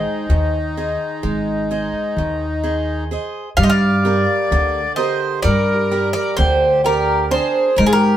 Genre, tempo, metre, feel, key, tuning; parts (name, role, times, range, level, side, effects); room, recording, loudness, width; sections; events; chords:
greek folk, Greek bouzouki band; 128 BPM (eighths); 9/8; straight; G phrygian; A4 = 440 Hz
Greek bouzouki; melody; 0.0-8.2 s; Ab4 to G5; -18 LUFS; equal; slapback echo
accordion; second line; 0.0-8.2 s; Eb4 to D5; -21 LUFS; equal
picked acoustic archtop guitar; accompaniment; 0.0-8.2 s; D3 to G5; -24 LUFS; right 3 dB
upright bass; bass; 0.3-8.2 s; Ab1 to Ab2; -19 LUFS; equal
moderate studio reverb, RT60 0.6 s; band playing live in one room; -15 LUFS; side -11 dB against mid
0.0-3.6 A section; 3.6-8.2 B section
0.0 Ab; 3.6 Gm